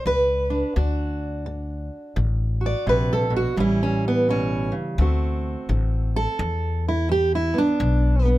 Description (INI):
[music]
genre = acoustic country blues, solo or duo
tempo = 85 BPM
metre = 4/4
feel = swing 62% on 8ths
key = unclear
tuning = A4 = 440 Hz
[part]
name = fingerpicked steel-string acoustic guitar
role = melody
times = 0.0-8.4 s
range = E2 to D5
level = -23 LUFS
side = right 2 dB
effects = none
[part]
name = upright bass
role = bass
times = 0.1-8.4 s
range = A1 to E2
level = -23 LUFS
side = left 1 dB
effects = none
[sound]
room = little or no reverb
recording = close, detailed microphones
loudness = -20 LUFS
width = side -16 dB against mid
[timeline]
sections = 0.0-8.4 A section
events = steel-string acoustic guitar solo 0.0-8.4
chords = 0.0 E7; 0.8 D; 3.6 A7; 5.0 D7; 6.4 E7(no3)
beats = 0.05 | 0.76 1.46 2.17 2.87 | 3.58 4.28 4.98 5.69 | 6.39 7.09 7.80